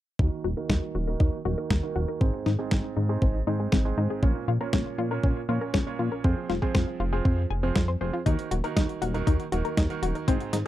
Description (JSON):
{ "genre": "italo disco", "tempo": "119 BPM", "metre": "4/4", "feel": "straight", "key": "Eb dorian", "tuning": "A4 = 443 Hz", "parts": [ { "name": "analog pluck", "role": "arpeggios", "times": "0.2-10.6 s", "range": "C4 to Ab5", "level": "-32 LUFS", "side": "left 5 dB", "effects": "chorus, cassette tape, tape echo" }, { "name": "bright grand piano", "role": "stabs", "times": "0.2-10.6 s", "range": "Ab2 to Db5", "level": "-32 LUFS", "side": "right 6 dB", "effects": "low-pass filter, tape echo" }, { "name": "chorused synth bass", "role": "bass", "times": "0.2-10.6 s", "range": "Eb1 to Bb2", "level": "-28 LUFS", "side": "equal", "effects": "none" }, { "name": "electronic kick drum", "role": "drums", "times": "0.2-10.4 s", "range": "none", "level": "-25 LUFS", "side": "equal", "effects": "none" }, { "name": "clean 12-bit digital drum machine", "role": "drums", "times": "0.7-10.6 s", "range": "hi-hat, snare drum", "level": "-30 LUFS", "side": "right 1 dB", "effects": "none" } ], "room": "little or no reverb", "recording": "dry, close 1970s-style studio recording", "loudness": "-24 LUFS", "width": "side -14 dB against mid", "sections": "0.2-10.7 A section", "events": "filter sweep on synth arpeggio sound 0.2-10.7; filter sweep on grand piano 0.2-10.7", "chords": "0.2 Ebm; 2.2 Ab; 4.2 Bbm; 6.2 Fm; 8.3 Ebm" }